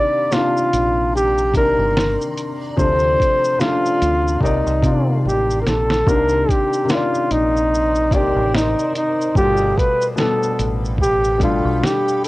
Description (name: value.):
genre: lo-fi hip hop.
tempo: 73 BPM.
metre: 4/4.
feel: swing 56% on 16ths.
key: C dorian.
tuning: A4 = 441 Hz.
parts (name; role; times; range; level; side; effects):
mellow flugelhorn; melody; 0.0-12.3 s; Eb4 to D5; -18 LUFS; equal; tape echo.
felt-muted upright piano; accompaniment; 0.0-12.3 s; Bb2 to D5; -23 LUFS; left 4 dB; cassette tape.
granular cloud pad; sustained chords; 0.0-12.3 s; Eb3 to C6; -33 LUFS; right 1 dB; built-in reverb, cassette tape.
lo-fi sampler-style drum kit; drums; 0.3-12.3 s; hi-hat, kick drum, shaker, snare drum; -21 LUFS; equal; cassette tape.
deep dub fingered electric bass; bass; 0.7-11.8 s; G1 to C3; -22 LUFS; equal; none.
room: light reverb.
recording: home recording on cassette.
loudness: -15 LUFS.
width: side -19 dB against mid.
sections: 0.0-6.1 A section; 6.1-12.3 B section.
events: drum fill 5.2-6.1.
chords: 0.0 Cm9; 2.8 Dm7; 4.4 Cm9; 9.4 G9.